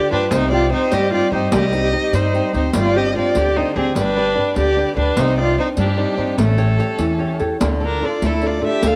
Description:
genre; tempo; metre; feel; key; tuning
italian folk, Italian serenade; 99 BPM (dotted quarters); 6/8; straight; C harmonic minor; A4 = 438 Hz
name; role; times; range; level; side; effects
warm viola; melody; 0.0-9.0 s; C4 to A4; -24 LUFS; equal; cassette tape
warm violin; second line; 0.0-9.0 s; G4 to F5; -25 LUFS; equal; cassette tape
flamenco guitar; accompaniment; 0.0-9.0 s; C3 to C#5; -23 LUFS; equal; cassette tape
upright bass; bass; 0.1-9.0 s; G1 to G2; -24 LUFS; equal; none
riq; percussion; 0.3-9.0 s; none; -27 LUFS; equal; none
room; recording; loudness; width
light reverb, small room reverb; home recording on cassette; -18 LUFS; mono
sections
0.0-7.6 A section; 7.6-9.0 B section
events
none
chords
0.3 Cm; 2.8 Gsus4; 4.0 G; 5.2 Cmadd9; 6.4 A7; 7.6 Dm

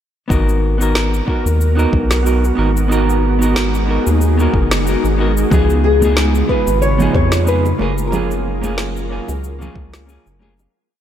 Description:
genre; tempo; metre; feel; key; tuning
sunset chillout; 92 BPM; 4/4; swing 55% on 16ths; G# dorian; A4 = 440 Hz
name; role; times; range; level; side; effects
hollow-body jazz guitar; accompaniment; 0.3-10.5 s; A#3 to A#4; -21 LUFS; moving between left 4 dB and right 4 dB; auto-pan, diffuse ambient delay
ethereal airy pad; sustained chords; 1.0-10.7 s; C#3 to A#4; -20 LUFS; right 1 dB; ensemble chorus, built-in reverb
round analog bass; bass; 0.3-10.7 s; F#1 to E#2; -17 LUFS; equal; none
electronic cabasa and snare drum; drums; 0.3-10.7 s; none; -24 LUFS; equal; none
electronic kick drum; drums; 0.3-9.9 s; none; -18 LUFS; equal; none
nylon-string guitar; melody; 5.5-10.0 s; G#4 to C#5; -19 LUFS; left 2 dB; lush chorus, diffuse ambient delay
bongos and congas; percussion; 5.5-10.7 s; none; -24 LUFS; right 2 dB; none
room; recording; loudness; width
moderate plate reverb, RT60 3.1 s; dreamy mix soaked in reverb; -13 LUFS; side -10 dB against mid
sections
0.3-10.7 groove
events
fade-out 7.3-10.7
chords
0.3 G#m9; 5.5 C#9; 7.8 F#maj9

